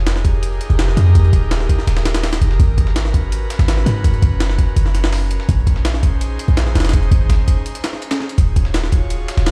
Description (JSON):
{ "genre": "drum and bass, jungle", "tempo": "166 BPM", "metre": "4/4", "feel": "straight", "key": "unclear", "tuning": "A4 = 439 Hz", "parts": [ { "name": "airy breathy pad", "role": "sustained chords", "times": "0.0-9.5 s", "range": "Db4 to Db5", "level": "-30 LUFS", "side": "equal", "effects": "chorus, vintage 12-bit sampler grit" }, { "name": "warm 808-style bass", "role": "bass", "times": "0.0-9.5 s", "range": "Eb1 to Ab2", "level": "-18 LUFS", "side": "equal", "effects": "none" }, { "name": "dusty soul sampler-style drum kit", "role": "drums", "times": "0.1-9.5 s", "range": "hi-hat, snare drum", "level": "-35 LUFS", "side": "equal", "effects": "none" }, { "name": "jungle sampler-style drum kit", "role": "drums", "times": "0.1-9.5 s", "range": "hi-hat, kick drum, snare drum", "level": "-19 LUFS", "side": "equal", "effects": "overdrive" } ], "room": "little or no reverb", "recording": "played on a big sound system in a bare room, stone room reverb", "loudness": "-16 LUFS", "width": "mono", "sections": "0.0-9.5 A section", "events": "break 7.7-8.4", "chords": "0.0 Fm11; 2.6 Abm11; 5.5 Bbm11; 8.4 Ebm11" }